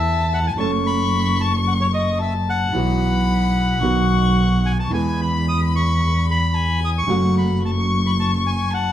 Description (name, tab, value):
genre	tango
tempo	111 BPM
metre	4/4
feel	rubato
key	unclear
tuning	A4 = 440 Hz
part	bandoneon	melody	0.0-8.9 s	C#5 to D#6	-24 LUFS	left 1 dB	none
part	warm violin	second line	0.0-8.9 s	F#5 to C#6	-25 LUFS	left 6 dB	none
part	clear concert grand piano	accompaniment	0.0-8.9 s	B1 to A4	-24 LUFS	right 2 dB	none
part	dark double bass	bass	0.0-8.9 s	F#1 to E2	-20 LUFS	equal	none
room	wet studio reverb, RT60 0.9 s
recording	heard from further back in the room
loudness	-17 LUFS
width	side -11 dB against mid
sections	0.0-8.9 A section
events	none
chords	0.0 Am/E; 0.6 F#m; 2.7 Bsus4; 3.8 B; 4.9 E; 7.1 F#m